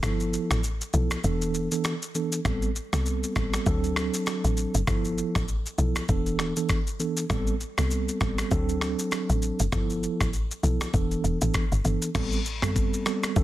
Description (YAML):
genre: afrobeats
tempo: 99 BPM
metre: 4/4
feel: swing 58% on 16ths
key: A minor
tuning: A4 = 440 Hz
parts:
  - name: mellow tine electric piano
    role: accompaniment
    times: 0.0-13.4 s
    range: E3 to A4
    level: -29 LUFS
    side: right 2 dB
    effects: medium stereo tremolo
  - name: woody log drum bass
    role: bass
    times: 0.0-13.4 s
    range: E1 to D2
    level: -27 LUFS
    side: equal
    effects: none
  - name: dusty soul sampler-style drum kit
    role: drums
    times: 0.0-13.4 s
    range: crash cymbal, finger snaps, kick drum, rim click, shaker, toms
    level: -28 LUFS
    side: left 1 dB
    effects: soft clipping on snare
room: little or no reverb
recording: dense, heavily limited modern master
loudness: -24 LUFS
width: side -14 dB against mid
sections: 0.0-12.1 A section; 12.1-13.4 B section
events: break 0.0-2.5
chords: 0.0 G13; 1.2 E7sus4; 2.5 Am9; 3.7 D7; 4.9 G13; 6.1 E7sus4; 7.3 Am9; 8.5 D7; 9.7 G13; 10.9 E7sus4; 12.1 Am9